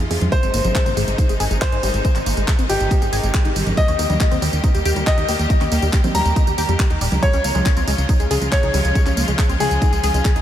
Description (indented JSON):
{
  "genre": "uplifting trance",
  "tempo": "139 BPM",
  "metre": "4/4",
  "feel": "straight",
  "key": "Ab major",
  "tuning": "A4 = 440 Hz",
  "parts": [
    { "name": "bright studio string section", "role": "sustained chords", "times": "0.0-10.4 s", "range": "C3 to G4", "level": "-27 LUFS", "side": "left 1 dB", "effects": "sidechain pumping, low-pass filter" },
    { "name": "tight sequenced synth", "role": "arpeggios", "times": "0.0-10.4 s", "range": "G3 to Ab4", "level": "-26 LUFS", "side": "left 1 dB", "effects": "chorus, sidechain pumping, tape echo" },
    { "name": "plucky analog bass", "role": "bass", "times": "0.0-10.4 s", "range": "Eb1 to F2", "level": "-21 LUFS", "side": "equal", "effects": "sidechain pumping" },
    { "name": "house drum kit", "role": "drums", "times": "0.0-10.4 s", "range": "congas, handclaps, hi-hat, tambourine", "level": "-25 LUFS", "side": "right 2 dB", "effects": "none" },
    { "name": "bright grand piano", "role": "second line", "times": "0.3-10.4 s", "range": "G4 to Bb5", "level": "-23 LUFS", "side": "left 2 dB", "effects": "ping-pong delay" },
    { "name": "electronic kick drum", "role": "drums", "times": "0.3-10.3 s", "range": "none", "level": "-17 LUFS", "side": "equal", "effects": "none" }
  ],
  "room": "moderate huge ambient reverb, RT60 4.8 s",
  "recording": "dreamy mix soaked in reverb",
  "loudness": "-15 LUFS",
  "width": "side -11 dB against mid",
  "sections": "0.0-10.4 A section",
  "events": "none",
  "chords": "0.3 Ab; 3.8 Eb; 7.2 Db",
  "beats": "| 0.32 0.75 1.19 1.62 | 2.05 2.48 2.91 3.34 | 3.77 4.21 4.64 5.07 | 5.50 5.93 6.37 6.80 | 7.23 7.66 8.09 8.52 | 8.96 9.39 9.82 10.25"
}